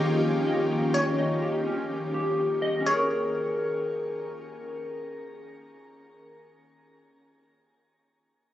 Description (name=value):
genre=hip hop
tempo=125 BPM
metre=4/4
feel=half-time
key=Bb dorian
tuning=A4 = 441 Hz
part: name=ethereal airy pad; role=sustained chords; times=0.0-0.9 s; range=Eb3 to G4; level=-29 LUFS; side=equal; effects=ensemble chorus, built-in reverb
part: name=mellow electric guitar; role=arpeggios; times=0.0-7.5 s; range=Db4 to Eb5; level=-29 LUFS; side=left 1 dB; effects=lush chorus, low-pass filter, tape echo
part: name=glassy wavetable pluck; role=melody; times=0.9-4.3 s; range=Db5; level=-30 LUFS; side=left 1 dB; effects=chorus, low-pass filter, tape echo
room=light reverb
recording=recorded on a phone in the room, club reverb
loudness=-25 LUFS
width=side -12 dB against mid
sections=0.0-2.9 A section; 2.9-6.7 B section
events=none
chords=0.0 Eb7; 2.9 Bbm7